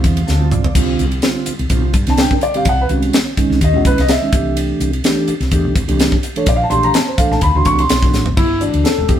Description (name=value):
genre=electric jazz fusion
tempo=126 BPM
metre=4/4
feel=swing 54% on 16ths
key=C mixolydian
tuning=A4 = 440 Hz
part: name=dark baby grand piano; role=melody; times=0.0-9.2 s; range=D4 to Db6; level=-18 LUFS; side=left 1 dB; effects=none
part: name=mellow tonewheel organ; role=accompaniment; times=0.0-9.2 s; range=D3 to A5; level=-20 LUFS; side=right 3 dB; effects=slow rotary speaker
part: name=woody fretless electric bass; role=bass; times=0.0-9.2 s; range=E1 to G2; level=-18 LUFS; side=equal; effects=none
part: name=tight funk drum kit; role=drums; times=0.0-9.2 s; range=crash cymbal, hi-hat, kick drum, ride cymbal, snare drum, toms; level=-17 LUFS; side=equal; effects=none
room=moderate stone room reverb, RT60 1.0 s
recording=band playing live in one room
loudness=-12 LUFS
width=side -10 dB against mid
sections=0.0-8.4 A section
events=grand piano solo 0.0-8.4; tonewheel organ fill 0.0-0.8; drum fill 0.3-0.8, 8.1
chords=0.0 Fsus2; 0.8 Csus4; 2.7 Emaj9/C; 4.3 C69; 6.5 Bbmaj7; 7.4 D13; 8.4 Gsus2